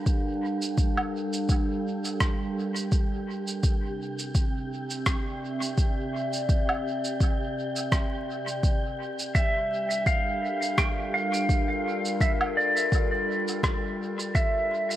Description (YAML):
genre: ambient dub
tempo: 84 BPM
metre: 4/4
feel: swing 56% on 16ths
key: G dorian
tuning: A4 = 443 Hz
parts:
  - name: warbly tape-like pad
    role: sustained chords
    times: 0.0-15.0 s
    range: C3 to F5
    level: -31 LUFS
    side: equal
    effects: chorus, built-in reverb
  - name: wind-like tuned noise texture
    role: texture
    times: 0.0-15.0 s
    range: G4 to G5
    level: -39 LUFS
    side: left 1 dB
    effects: built-in reverb
  - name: electronic kick drum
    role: drums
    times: 0.1-14.5 s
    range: none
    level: -25 LUFS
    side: equal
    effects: overdrive
  - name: electronic shaker, woodblock and rim click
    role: drums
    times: 0.1-15.0 s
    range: none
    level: -32 LUFS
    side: right 1 dB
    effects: overdrive, dub echo
  - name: clean lap steel guitar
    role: melody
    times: 9.3-15.0 s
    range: D5 to G5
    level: -27 LUFS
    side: right 1 dB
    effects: dub echo
room: moderate concert hall reverb, RT60 1.8 s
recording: vinyl crackle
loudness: -24 LUFS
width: side -13 dB against mid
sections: 0.0-15.0 A section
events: none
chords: 0.0 Gm7; 3.6 C7; 9.3 Gm7